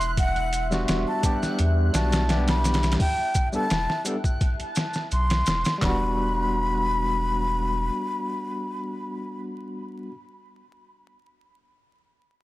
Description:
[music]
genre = trip hop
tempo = 85 BPM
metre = 4/4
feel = straight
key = E minor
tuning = A4 = 439 Hz
[part]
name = breathy mellow silver concert flute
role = melody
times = 0.0-9.4 s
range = F#5 to C6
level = -28 LUFS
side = equal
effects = tape echo
[part]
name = deep dark ambient pad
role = sustained chords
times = 0.0-5.8 s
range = E5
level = -36 LUFS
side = left 1 dB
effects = chorus, built-in reverb, vintage 12-bit sampler grit
[part]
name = soft dub sub bass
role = bass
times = 0.0-7.9 s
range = E1 to E2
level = -25 LUFS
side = equal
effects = transformer saturation
[part]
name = trip hop sampler-style drum kit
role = drums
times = 0.0-6.0 s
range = handclaps, hi-hat, kick drum, snare drum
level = -25 LUFS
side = equal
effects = none
[part]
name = maracas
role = percussion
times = 0.0-5.8 s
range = none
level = -36 LUFS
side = left 1 dB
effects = none
[part]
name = backwards swelling texture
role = texture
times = 0.0-5.8 s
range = F#6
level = -40 LUFS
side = right 2 dB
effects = built-in reverb
[part]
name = overdriven tine electric piano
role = accompaniment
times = 0.7-10.1 s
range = G3 to A4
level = -29 LUFS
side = equal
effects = tremolo
[sound]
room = light reverb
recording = dry, gritty hardware recording, vinyl crackle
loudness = -22 LUFS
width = side -17 dB against mid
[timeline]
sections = 0.0-5.8 A section; 5.8-8.6 B section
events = none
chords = 0.2 Em9; 3.0 Cmaj7/E; 5.8 Em9

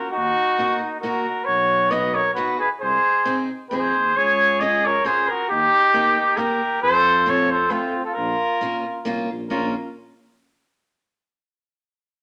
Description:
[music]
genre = alpine folk, alpine dance band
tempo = 134 BPM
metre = 3/4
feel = swing 54% on 8ths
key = Bb minor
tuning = A4 = 440 Hz
[part]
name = warm flugelhorn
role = melody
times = 0.0-9.7 s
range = F4 to D#5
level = -22 LUFS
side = equal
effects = none
[part]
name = mellow trumpet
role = second line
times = 0.0-9.7 s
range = C4 to B4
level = -27 LUFS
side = equal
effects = none
[part]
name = mellow tuba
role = bass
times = 0.2-9.7 s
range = Bb1 to F2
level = -34 LUFS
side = equal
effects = none
[part]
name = picked steel-string acoustic guitar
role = accompaniment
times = 0.6-9.7 s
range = A3 to Ab4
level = -30 LUFS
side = equal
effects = none
[sound]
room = wet studio reverb, RT60 0.9 s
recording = none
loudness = -20 LUFS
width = mono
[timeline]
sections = 0.0-9.5 A section; 9.5-10.9 B section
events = none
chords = 0.1 Ebm; 1.5 B; 2.8 Ab/C; 4.2 Db; 5.5 Eb; 6.8 F; 8.2 Bbm

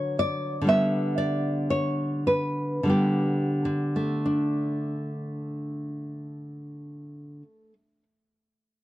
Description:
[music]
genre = romantic piece for solo classical guitar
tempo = 41-66 BPM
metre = 3/4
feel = rubato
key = D major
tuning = A4 = 439 Hz
[part]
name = nylon-string guitar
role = solo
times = 0.0-8.0 s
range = D3 to E5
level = -25 LUFS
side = equal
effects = none
[sound]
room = moderate booth ambience, RT60 0.2 s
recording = dry, close 1970s-style studio recording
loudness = -24 LUFS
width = side -15 dB against mid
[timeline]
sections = 0.0-4.3 A section; 4.3-8.0 B section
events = slowing down 0.0-4.3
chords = 0.0 D; 0.7 G/D; 4.3 D5

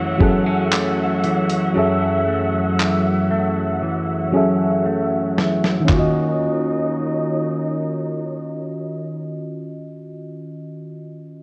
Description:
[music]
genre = contemporary R&B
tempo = 58 BPM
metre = 4/4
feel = straight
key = unclear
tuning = A4 = 440 Hz
[part]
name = FM electric piano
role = accompaniment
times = 0.0-11.4 s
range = Eb3 to Gb5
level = -23 LUFS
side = equal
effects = chorus, low-pass filter
[part]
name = rich chamber string section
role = sustained chords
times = 0.0-9.2 s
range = Gb3 to Gb5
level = -29 LUFS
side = equal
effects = low-pass filter
[part]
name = clean electric guitar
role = arpeggios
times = 0.0-9.4 s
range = Gb2 to Gb4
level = -27 LUFS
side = equal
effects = low-pass filter, tape echo
[part]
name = dusty soul sampler-style drum kit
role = drums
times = 0.2-6.1 s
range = handclaps, hi-hat, kick drum, snare drum, toms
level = -23 LUFS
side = equal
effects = none
[sound]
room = moderate concert hall reverb, RT60 2.3 s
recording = worn, warbling old tape, cassette tape, warbly pitch drift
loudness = -20 LUFS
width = mono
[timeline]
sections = 0.0-5.9 A section; 5.9-10.0 B section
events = filter sweep 0.0-5.9; drum fill 4.9-5.9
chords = 0.0 Gbm7; 5.9 Ebm7

